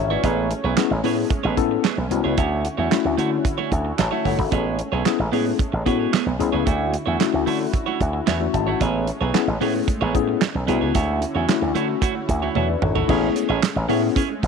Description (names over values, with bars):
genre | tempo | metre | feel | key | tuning
early-eighties boogie funk | 112 BPM | 4/4 | straight | A major | A4 = 441 Hz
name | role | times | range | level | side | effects
tine electric piano | accompaniment | 0.0-14.2 s | A3 to A5 | -24 LUFS | left 15 dB | none
warm analog pad | sustained chords | 0.0-14.5 s | D3 to F#4 | -31 LUFS | equal | chorus
slap bass with an envelope filter | bass | 0.0-14.5 s | G1 to D3 | -23 LUFS | equal | none
clean electric guitar | riff | 0.1-14.5 s | A3 to C#5 | -26 LUFS | right 13 dB | wide subtle chorus
damped 70s drum kit | drums | 0.2-14.5 s | crash cymbal, handclaps, hi-hat, kick drum, snare drum, toms | -24 LUFS | right 4 dB | none
room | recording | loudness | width
light reverb, small room ambience | 1960s-style stereo with parts hard left and right | -19 LUFS | side -6 dB against mid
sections
0.0-13.1 A section; 13.1-14.5 B section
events
tine electric piano fill 3.7-4.5, 8.0-8.8; drum fill 12.6-13.1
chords
0.2 Amaj9; 2.4 Dmaj9; 4.5 Amaj9; 6.7 Dmaj9; 8.8 Amaj9; 11.0 Dmaj9; 13.1 Amaj7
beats
| 0.24 0.77 1.31 1.84 | 2.38 2.92 3.45 3.99 | 4.52 5.06 5.59 6.13 | 6.67 7.20 7.74 8.27 | 8.81 9.34 9.88 10.42 | 10.95 11.49 12.02 12.56 | 13.09 13.63 14.17